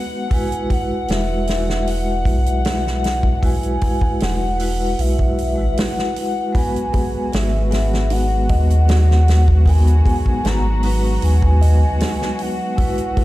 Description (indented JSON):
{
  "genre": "trip hop",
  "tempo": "77 BPM",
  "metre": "4/4",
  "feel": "straight",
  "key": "G# minor",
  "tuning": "A4 = 440 Hz",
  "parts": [
    { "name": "pure breathy sine lead", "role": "melody", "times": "0.0-13.2 s", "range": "E5 to A#5", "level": "-26 LUFS", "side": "left 1 dB", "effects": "analog chorus, tape echo" },
    { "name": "vibraphone with medium mallets", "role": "accompaniment", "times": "0.0-13.2 s", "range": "G#3 to F#5", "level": "-24 LUFS", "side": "equal", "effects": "tremolo, tape echo" },
    { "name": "warm studio string section", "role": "sustained chords", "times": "0.0-13.2 s", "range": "F#3 to F#5", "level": "-32 LUFS", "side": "left 3 dB", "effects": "none" },
    { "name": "natural country drum kit", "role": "drums", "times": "0.3-13.2 s", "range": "hi-hat, kick drum, snare drum", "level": "-21 LUFS", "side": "equal", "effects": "none" },
    { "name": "soft dub sub bass", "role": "bass", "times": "1.1-12.0 s", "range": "E1 to D#2", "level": "-16 LUFS", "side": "equal", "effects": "none" },
    { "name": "music box", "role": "arpeggios", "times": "6.9-13.2 s", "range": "D#4 to D#5", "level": "-32 LUFS", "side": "right 4 dB", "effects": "tape echo" }
  ],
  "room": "small room ambience",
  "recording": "played on a big sound system in a bare room, large studio reverb",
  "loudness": "-15 LUFS",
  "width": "side -16 dB against mid",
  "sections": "0.0-13.2 A section",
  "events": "none",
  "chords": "0.3 Eadd9; 6.5 G#m7"
}